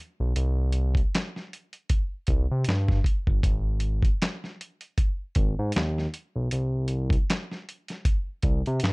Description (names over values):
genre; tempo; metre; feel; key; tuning
R&B, neo-soul; 78 BPM; 4/4; swing 57% on 16ths; C minor; A4 = 440 Hz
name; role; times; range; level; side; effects
smooth synth bass; bass; 0.2-8.9 s; G1 to C3; -25 LUFS; equal; none
dusty soul sampler-style drum kit; drums; 0.4-8.9 s; handclaps, hi-hat, kick drum, snare drum; -25 LUFS; equal; none
room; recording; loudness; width
little or no reverb; dark, warm production; -24 LUFS; side -33 dB against mid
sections
0.0-8.9 A section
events
none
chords
none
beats
| 0.35 1.12 1.89 2.66 | 3.43 4.20 4.97 5.74 | 6.51 7.28 8.05 8.81